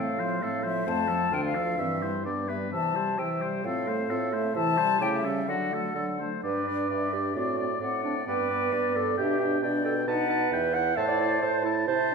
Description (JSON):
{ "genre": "quick classical-period movement for wind quintet", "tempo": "132 BPM", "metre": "2/4", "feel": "straight", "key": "G major from 4.5 s", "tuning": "A4 = 440 Hz", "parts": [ { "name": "silver concert flute", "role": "melody", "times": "0.0-12.1 s", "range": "C5 to A5", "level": "-31 LUFS", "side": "left 7 dB", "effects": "none" }, { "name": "warm oboe", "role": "second line", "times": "0.0-12.1 s", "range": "F4 to A5", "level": "-31 LUFS", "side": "left 2 dB", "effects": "none" }, { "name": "clear French horn", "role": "accompaniment", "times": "0.0-12.1 s", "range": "D3 to E4", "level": "-33 LUFS", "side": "left 1 dB", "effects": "none" }, { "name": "warm clarinet", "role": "accompaniment", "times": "0.0-12.1 s", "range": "A3 to F#5", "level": "-31 LUFS", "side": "right 7 dB", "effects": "none" }, { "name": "warm bassoon", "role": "bass", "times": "0.0-12.1 s", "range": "D2 to D3", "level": "-32 LUFS", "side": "right 2 dB", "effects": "none" } ], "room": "wet recital hall reverb, RT60 1.4 s", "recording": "heard from further back in the room", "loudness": "-25 LUFS", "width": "side -5 dB against mid", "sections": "0.0-6.4 A section; 6.4-12.1 B section", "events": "none", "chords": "0.0 F/A; 0.9 F; 1.3 Dm; 1.8 C/G; 2.3 G; 2.7 C; 3.6 F/A; 4.5 C; 5.0 A7/C#; 5.5 D; 6.4 G; 7.4 D7/A; 8.3 G; 9.2 G/B; 10.1 B7; 10.5 Em; 11.0 Am" }